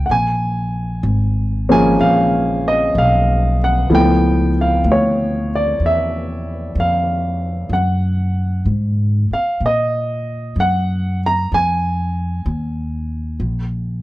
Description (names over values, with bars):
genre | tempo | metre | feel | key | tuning
jazz ballad | 63 BPM | 4/4 | swing 68% on 8ths | unclear | A4 = 440 Hz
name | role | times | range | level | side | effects
warm baby grand piano | accompaniment | 0.0-14.0 s | F3 to Bb5 | -16 LUFS | equal | none
upright bass | bass | 0.0-14.0 s | Ab1 to Bb2 | -18 LUFS | equal | none
room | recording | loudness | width
little or no reverb | dry, close 1970s-style studio recording | -15 LUFS | side -17 dB against mid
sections
0.0-14.0 A section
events
none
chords
0.1 Bbm7; 3.9 Db7alt; 7.7 Gb69; 11.5 Ebsus24; 13.4 Bb7(no3)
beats
| 0.08 1.03 1.99 2.94 | 3.90 4.85 5.80 6.75 | 7.71 8.66 9.61 10.56 | 11.51 12.46 13.41